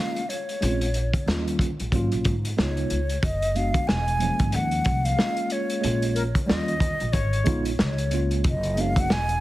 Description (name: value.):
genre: hip hop, jazz-hop.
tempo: 92 BPM.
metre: 4/4.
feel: swing 58% on 16ths.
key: unclear.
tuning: A4 = 441 Hz.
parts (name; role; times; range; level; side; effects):
breathy concert flute; melody; 0.0-9.4 s; Db5 to G#5; -28 LUFS; left 1 dB; none.
mellow tine electric piano; accompaniment; 0.0-9.2 s; F3 to F#4; -29 LUFS; right 2 dB; medium stereo tremolo.
vintage drum kit; drums; 0.2-9.4 s; hi-hat, kick drum, snare drum; -26 LUFS; equal; none.
upright bass; bass; 0.6-9.4 s; E1 to Ab2; -26 LUFS; equal; none.
breathy concert flute; second line; 6.1-7.7 s; Bb4 to Eb5; -30 LUFS; left 2 dB; none.
room: light reverb, small room ambience.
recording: heavily compressed radio sound.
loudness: -22 LUFS.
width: side -16 dB against mid.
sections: 0.0-9.4 A section.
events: none.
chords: 0.0 Eb7sus4 (rootless); 0.6 Bbm7; 1.3 Eb9; 1.9 Ab13sus4; 2.6 Db7; 3.2 Bm6/F#; 3.9 Eadd9; 4.5 Eb7sus4; 5.8 Bbm7; 6.5 Eb9; 7.1 Absus24; 7.8 Db; 8.4 Bm6/F#.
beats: | 0.62 1.27 1.93 2.58 | 3.23 3.88 4.53 5.19 | 5.84 6.49 7.14 7.79 | 8.45 9.10.